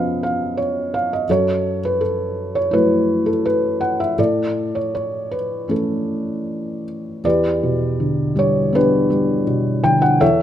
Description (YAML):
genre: classical, lyrical solo piano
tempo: 81 BPM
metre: 4/4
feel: rubato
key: E dorian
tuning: A4 = 444 Hz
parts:
  - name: felt-muted upright piano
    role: solo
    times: 0.0-10.4 s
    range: E2 to G5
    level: -17 LUFS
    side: equal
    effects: none
room: light reverb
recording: close, detailed microphones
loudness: -17 LUFS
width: side -10 dB against mid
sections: 0.0-7.2 A section; 7.2-10.4 A section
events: none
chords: 0.0 C#7/E#; 1.3 F#m7; 4.2 A; 7.2 Em7